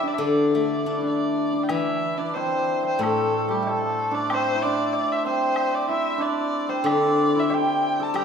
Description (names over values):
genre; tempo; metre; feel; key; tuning
chinese traditional, Chinese chamber ensemble; 93 BPM; 2/4; rubato; D shang mode; A4 = 440 Hz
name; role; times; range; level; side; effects
rich erhu; melody; 0.0-8.2 s; G4 to A5; -26 LUFS; left 2 dB; none
hammered dulcimer; second line; 0.0-8.2 s; G3 to A4; -25 LUFS; right 3 dB; none
steel-string zither; accompaniment; 0.0-8.2 s; A2 to D4; -25 LUFS; left 3 dB; none
woodblock; percussion; 1.7-8.2 s; none; -35 LUFS; left 2 dB; none
room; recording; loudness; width
moderate scoring stage reverb, RT60 1.7 s; minimal, uncompressed stereo recording; -20 LUFS; side -6 dB against mid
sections
0.0-1.7 A section; 1.7-8.2 B section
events
none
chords
none